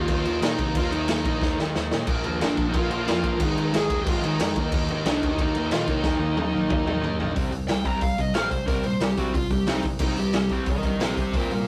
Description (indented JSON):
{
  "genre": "punk rock",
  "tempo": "182 BPM",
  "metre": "4/4",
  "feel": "straight",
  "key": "C minor",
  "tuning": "A4 = 439 Hz",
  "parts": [
    { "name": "bluesy overdriven lead guitar", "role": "melody", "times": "0.0-11.7 s", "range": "D4 to Bb5", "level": "-30 LUFS", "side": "equal", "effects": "distortion" },
    { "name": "overdriven semi-hollow guitar", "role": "riff", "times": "0.0-11.7 s", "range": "Ab2 to Eb4", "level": "-30 LUFS", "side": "equal", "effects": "none" },
    { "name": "overdriven picked electric bass", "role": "bass", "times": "0.0-11.6 s", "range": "G1 to C3", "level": "-36 LUFS", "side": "equal", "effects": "none" },
    { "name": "raw garage drum kit", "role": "drums", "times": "0.1-11.6 s", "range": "crash cymbal, hi-hat, kick drum, snare drum, toms", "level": "-28 LUFS", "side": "equal", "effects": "none" },
    { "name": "crunchy overdriven guitar", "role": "riff", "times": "2.1-11.6 s", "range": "Ab2 to Eb4", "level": "-35 LUFS", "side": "equal", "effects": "none" }
  ],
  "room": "light reverb",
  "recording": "rough rehearsal-room recording",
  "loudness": "-24 LUFS",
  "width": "mono",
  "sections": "0.0-7.4 A section; 7.4-11.7 B section",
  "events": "drum fill 1.4-2.1, 6.0-7.4; lead electric guitar solo 7.4-11.7",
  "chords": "0.0 Eb5; 2.1 Bb5; 3.4 Ab5; 4.6 Eb5; 7.4 C5"
}